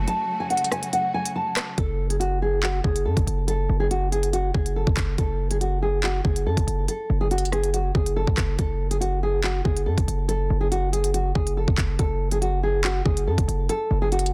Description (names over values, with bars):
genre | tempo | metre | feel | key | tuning
hip hop, drill | 141 BPM | 4/4 | half-time | F# minor | A4 = 440 Hz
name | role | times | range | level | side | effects
nylon-string guitar | melody | 0.0-14.3 s | F#4 to A5 | -28 LUFS | equal | digital delay
clear symphonic string section | sustained chords | 0.0-1.7 s | C#3 to F#4 | -36 LUFS | equal | none
hard-hitting 808-style bass | bass | 0.0-14.3 s | F#1 to F#2 | -27 LUFS | equal | none
drill drum kit | drums | 0.1-14.3 s | handclaps, hi-hat, kick drum, rim click | -27 LUFS | equal | none
room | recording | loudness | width
small room ambience | dense, heavily limited modern master | -24 LUFS | mono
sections
0.0-1.8 A section; 1.8-14.3 B section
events
break 0.1-1.8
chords
0.0 F#m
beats
| 0.08 0.50 0.93 1.35 | 1.78 2.21 2.63 3.06 | 3.48 3.91 4.33 4.76 | 5.18 5.61 6.03 6.46 | 6.88 7.31 7.74 8.16 | 8.59 9.01 9.44 9.86 | 10.29 10.71 11.14 11.57 | 11.99 12.42 12.84 13.27 | 13.69 14.12